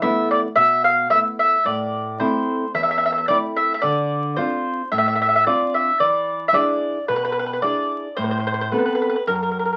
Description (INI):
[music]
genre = italian folk, Italian serenade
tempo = 110 BPM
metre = 4/4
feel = straight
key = A harmonic minor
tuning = A4 = 439 Hz
[part]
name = mandolin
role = melody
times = 0.0-9.8 s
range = A#4 to F5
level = -21 LUFS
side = equal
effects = none
[part]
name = nylon-string guitar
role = accompaniment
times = 0.0-9.8 s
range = E2 to A4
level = -27 LUFS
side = equal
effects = none
[sound]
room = wet studio ambience, RT60 0.4 s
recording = very old 78 rpm record, vinyl crackle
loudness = -20 LUFS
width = mono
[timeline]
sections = 0.0-9.8 A section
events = none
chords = 0.0 Esus4; 1.7 Am; 3.8 Dm7; 6.0 E7; 8.2 Amadd9